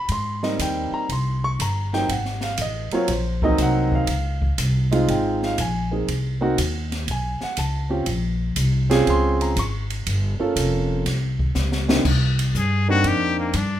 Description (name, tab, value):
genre	jazz, small-group swing and bop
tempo	120 BPM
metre	4/4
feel	swing 68% on 8ths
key	unclear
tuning	A4 = 439 Hz
part	dark baby grand piano	accompaniment	0.0-13.5 s	C3 to Db6	-23 LUFS	right 1 dB	none
part	upright bass	bass	0.1-13.8 s	F1 to Ab2	-23 LUFS	equal	none
part	open jazz drum kit	drums	0.1-13.7 s	crash cymbal, hi-hat, kick drum, ride cymbal, snare drum	-27 LUFS	equal	none
part	trumpet with straight mute	melody	12.6-13.8 s	Bb3 to Ab4	-23 LUFS	left 5 dB	none
room	light reverb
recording	minimal, uncompressed stereo recording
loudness	-19 LUFS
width	side -11 dB against mid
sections	0.0-12.1 A section; 12.1-13.8 A section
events	drum fill 11.6-12.1; muted trumpet solo 12.1-13.8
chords	0.1 Abmaj9; 2.1 Ab13; 4.1 Dbmaj7; 6.1 Cm7b5; 7.1 Bsus2; 8.1 Bbm7; 10.1 Gm7b5; 11.1 C5; 12.1 Cm7